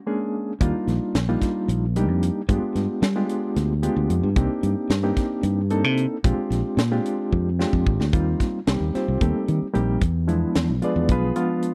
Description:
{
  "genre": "electric jazz fusion",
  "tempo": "223 BPM (eighths)",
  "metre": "7/8",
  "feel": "straight",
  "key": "unclear",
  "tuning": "A4 = 443 Hz",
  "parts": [
    { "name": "reed electric piano", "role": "accompaniment", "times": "0.1-11.7 s", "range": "F3 to D5", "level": "-27 LUFS", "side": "equal", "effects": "fast tremolo" },
    { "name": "fingered electric bass", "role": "bass", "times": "0.6-11.3 s", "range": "Ab1 to G3", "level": "-25 LUFS", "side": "equal", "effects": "none" },
    { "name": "tight funk drum kit", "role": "drums", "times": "0.6-11.7 s", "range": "hi-hat, kick drum, snare drum", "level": "-26 LUFS", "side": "equal", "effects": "none" }
  ],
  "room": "small room ambience",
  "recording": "dry, close 1970s-style studio recording",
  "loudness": "-23 LUFS",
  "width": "mono",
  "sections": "0.0-8.1 A section; 8.1-11.7 B section",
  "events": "drum fill 7.3-8.1",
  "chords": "0.0 Bb7#9; 0.6 Ebmaj7; 2.5 G7b9; 4.4 Cm7; 6.2 Bb13; 8.1 Eb69; 10.0 E7b9"
}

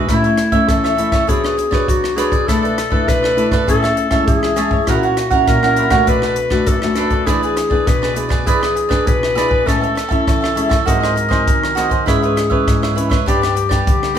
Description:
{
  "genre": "samba and choro",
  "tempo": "100 BPM",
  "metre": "4/4",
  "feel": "straight",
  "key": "A major",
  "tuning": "A4 = 441 Hz",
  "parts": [
    { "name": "clear clarinet", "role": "second line", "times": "0.0-14.2 s", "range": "E4 to B4", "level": "-19 LUFS", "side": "left 2 dB", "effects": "none" },
    { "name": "cavaquinho", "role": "accompaniment", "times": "0.0-14.2 s", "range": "D4 to A5", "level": "-20 LUFS", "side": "right 6 dB", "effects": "none" },
    { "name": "nylon-string guitar", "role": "accompaniment", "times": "0.0-14.2 s", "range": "F#2 to C#5", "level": "-19 LUFS", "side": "left 2 dB", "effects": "none" },
    { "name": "compact cocktail drum kit", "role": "drums", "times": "0.1-14.2 s", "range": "hi-hat, kick drum, rim click", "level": "-19 LUFS", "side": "equal", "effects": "none" }
  ],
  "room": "wet large studio reverb, RT60 0.9 s",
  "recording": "band playing live in one room",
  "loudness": "-13 LUFS",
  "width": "side -9 dB against mid",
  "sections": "0.1-14.2 A section",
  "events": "none",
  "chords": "0.1 A; 1.3 Bmadd9; 2.5 E7sus4/B; 3.7 Amaj7; 4.9 F#7/A#; 6.1 Bm7; 7.3 E7; 9.7 Amaj7; 10.9 G#7; 12.1 C#m7/G#; 13.3 G"
}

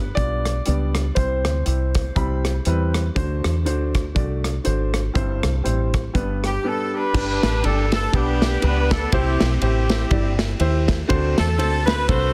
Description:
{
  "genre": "uptempo gospel",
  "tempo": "121 BPM",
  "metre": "4/4",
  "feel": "swing 57% on 8ths",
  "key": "C major",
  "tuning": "A4 = 439 Hz",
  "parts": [
    { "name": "warm concert grand piano", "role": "melody", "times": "0.0-2.9 s", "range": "B4 to D5", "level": "-31 LUFS", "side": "equal", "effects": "none" },
    { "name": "warm upright piano", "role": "accompaniment", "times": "0.0-12.3 s", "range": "G2 to B5", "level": "-28 LUFS", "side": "equal", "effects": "none" },
    { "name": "deep dub fingered electric bass", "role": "bass", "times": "0.0-12.3 s", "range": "G1 to E2", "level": "-24 LUFS", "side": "equal", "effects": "none" },
    { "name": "modern studio drum kit", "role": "drums", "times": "0.2-12.2 s", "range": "crash cymbal, hi-hat, kick drum, ride cymbal, rim click, snare drum", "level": "-26 LUFS", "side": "equal", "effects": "none" },
    { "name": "warm saxophone section", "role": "melody", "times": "6.5-12.3 s", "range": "B3 to C5", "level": "-26 LUFS", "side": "equal", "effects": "none" }
  ],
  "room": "light reverb",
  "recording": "dense, heavily limited modern master",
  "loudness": "-21 LUFS",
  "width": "mono",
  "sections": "0.0-7.1 A section; 7.1-12.3 B section",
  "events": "none",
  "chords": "0.0 G; 1.2 C; 3.2 D7; 5.2 C/G; 6.1 G; 9.1 C; 11.1 D7"
}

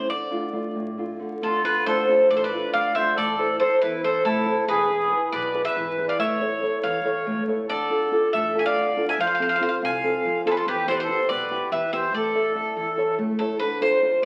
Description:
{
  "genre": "greek folk, Greek bouzouki band",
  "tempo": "280 BPM (eighths)",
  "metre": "7/8",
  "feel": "straight",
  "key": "D dorian sharp4",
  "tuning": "A4 = 440 Hz",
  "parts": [
    { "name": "Greek bouzouki", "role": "melody", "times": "0.0-14.2 s", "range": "A4 to G#5", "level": "-27 LUFS", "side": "equal", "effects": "none" },
    { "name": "nylon-string guitar", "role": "accompaniment", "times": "0.0-14.2 s", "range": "A2 to E5", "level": "-29 LUFS", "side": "equal", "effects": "none" },
    { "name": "accordion", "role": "second line", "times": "1.4-13.1 s", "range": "E4 to F5", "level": "-27 LUFS", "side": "equal", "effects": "none" },
    { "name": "upright bass", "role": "bass", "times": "1.6-14.2 s", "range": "E1 to F2", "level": "-48 LUFS", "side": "equal", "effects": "none" }
  ],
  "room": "wet large studio reverb, RT60 1.1 s",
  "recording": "very old 78 rpm record, vinyl crackle",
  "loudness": "-23 LUFS",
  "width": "mono",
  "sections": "0.0-1.6 A section; 1.6-13.6 B section",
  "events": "speeding up 0.0-14.2",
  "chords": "0.1 Dm; 3.2 Am; 4.7 E; 6.2 A; 7.7 Dm; 9.2 F; 10.7 Em; 12.1 A; 13.6 Dm"
}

